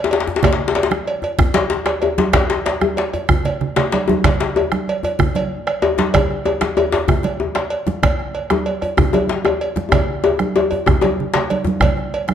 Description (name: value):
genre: west african traditional, West African drum ensemble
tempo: 127 BPM (dotted quarters)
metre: 12/8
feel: straight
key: none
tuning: none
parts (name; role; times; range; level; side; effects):
- djembe; percussion; 0.0-11.5 s; none; -18 LUFS; left 6 dB; none
- cowbell; percussion; 0.1-12.3 s; none; -23 LUFS; right 3 dB; none
- bombo; percussion; 0.3-12.3 s; none; -21 LUFS; right 2 dB; none
- djembe; percussion; 0.3-12.3 s; none; -25 LUFS; left 4 dB; none
- congas; percussion; 0.4-12.3 s; none; -22 LUFS; right 5 dB; none
room: moderate recital hall reverb, RT60 1.4 s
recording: dark, warm production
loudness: -15 LUFS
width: side -9 dB against mid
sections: 0.0-11.8 A section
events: drum fill 3.5-4.2, 9.9-11.8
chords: none